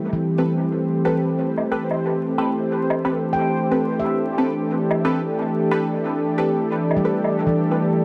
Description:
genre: ambient dub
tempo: 90 BPM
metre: 4/4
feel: swing 57% on 16ths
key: A minor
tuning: A4 = 441 Hz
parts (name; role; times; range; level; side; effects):
- warm analog pad; sustained chords; 0.0-8.0 s; E3 to A4; -24 LUFS; equal; chorus
- handpan; arpeggios; 0.0-8.0 s; E3 to G5; -28 LUFS; equal; low-pass filter, dub echo
- bubbling stepped-filter texture; texture; 0.0-8.0 s; C4 to D5; -32 LUFS; equal; chorus, built-in reverb
- shaker and woodblock; drums; 0.1-7.9 s; none; -31 LUFS; equal; low-pass filter on perc, low-pass filter on room, dub echo
- filtered dub chord stab; stabs; 0.4-7.9 s; C4 to B4; -28 LUFS; equal; phaser, analog chorus, dub echo
room: light reverb, small room ambience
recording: dark, warm production, vinyl crackle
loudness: -21 LUFS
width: mono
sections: 0.0-8.0 A section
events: filter sweep on analog synth pad 0.0-8.0; filter sweep on handpan 0.0-8.0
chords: 0.0 Am9

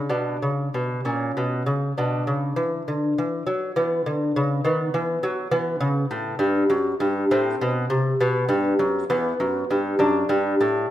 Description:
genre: classical, baroque-style dance for lute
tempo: 61-70 BPM (dotted quarters)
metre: 6/8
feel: rubato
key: B minor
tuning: A4 = 443 Hz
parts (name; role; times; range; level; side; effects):
- lute; solo; 0.0-10.9 s; E2 to D4; -21 LUFS; equal; none
room: moderate recital hall reverb, RT60 1.3 s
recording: minimal, uncompressed stereo recording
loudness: -21 LUFS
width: side -12 dB against mid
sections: 0.1-10.9 A section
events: none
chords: 0.1 Bm; 1.1 A#m; 2.0 Bm; 3.8 E5; 4.7 B/D#; 5.5 Em; 7.3 Am; 8.2 B5; 9.1 Em; 10.0 D/F#

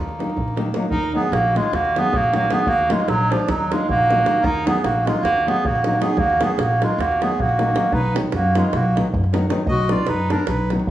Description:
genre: balkan folk, Balkan wedding band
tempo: 309 BPM (eighths)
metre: 9/8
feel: straight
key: Eb minor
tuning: A4 = 440 Hz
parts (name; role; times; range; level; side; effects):
- bright clarinet; melody; 0.0-10.7 s; F3 to F#4; -20 LUFS; right 1 dB; slapback echo
- accordion; second line; 0.0-10.7 s; Bb3 to D#5; -27 LUFS; right 4 dB; none
- upright bass; bass; 0.0-10.9 s; Bb1 to F#2; -24 LUFS; equal; none
- davul; percussion; 0.1-10.9 s; none; -26 LUFS; right 3 dB; none
- nylon-string guitar; accompaniment; 0.2-10.8 s; Eb3 to Eb4; -25 LUFS; left 2 dB; none
room: moderate recital hall reverb, RT60 1.7 s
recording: small room ambience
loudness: -17 LUFS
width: side -13 dB against mid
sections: 0.9-10.9 A section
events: none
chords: 0.0 Ebm; 7.9 B

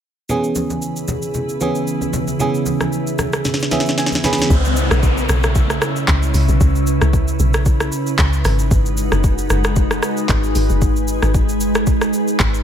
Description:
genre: amapiano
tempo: 114 BPM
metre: 4/4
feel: swing 55% on 16ths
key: C# minor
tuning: A4 = 438 Hz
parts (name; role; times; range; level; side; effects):
- FM electric piano; accompaniment; 0.3-4.5 s; E3 to B5; -20 LUFS; right 2 dB; chorus
- glassy FM pad; sustained chords; 0.7-12.6 s; C#2 to B4; -21 LUFS; right 1 dB; ensemble chorus, built-in reverb
- smooth R&B drum kit; drums; 0.3-12.6 s; handclaps, hi-hat, kick drum, rim click, shaker, snare drum; -19 LUFS; equal; none
- congas; percussion; 0.3-4.5 s; none; -26 LUFS; left 2 dB; none
- deep log drum bass; bass; 4.5-12.6 s; F#1 to C#2; -17 LUFS; equal; none
- downlifter; sound effects; 4.5-8.7 s; none; -25 LUFS; left 2 dB; none
room: little or no reverb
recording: none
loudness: -15 LUFS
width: side -9 dB against mid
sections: 0.3-4.5 A section; 4.5-12.6 B section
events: drum fill 3.5-4.5; FM electric piano fill 3.5-4.5; drop 4.5-12.6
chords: 0.3 C#m7; 8.4 G#m7

